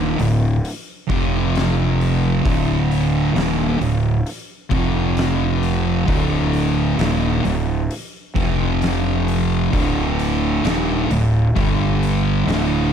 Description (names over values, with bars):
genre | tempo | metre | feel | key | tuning
stoner and doom metal | 66 BPM | 4/4 | straight | D phrygian | A4 = 440 Hz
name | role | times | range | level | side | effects
thick fuzz guitar | riff | 0.0-12.9 s | D2 to G3 | -21 LUFS | left 9 dB | distortion
thick fuzz guitar | riff | 0.0-12.9 s | D2 to G3 | -21 LUFS | right 9 dB | distortion
fuzz fingered electric bass | bass | 0.0-12.9 s | D1 to G1 | -22 LUFS | equal | overdrive
oversized low-tuned drum kit | drums | 0.2-12.7 s | hi-hat, kick drum, snare drum | -25 LUFS | left 1 dB | none
room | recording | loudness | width
light reverb | none | -16 LUFS | side -8 dB against mid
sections
0.0-12.9 A section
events
none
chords
0.0 D5; 1.1 F5; 2.4 D5; 4.7 F5; 6.1 D5; 8.4 F5; 9.7 D5; 11.6 G5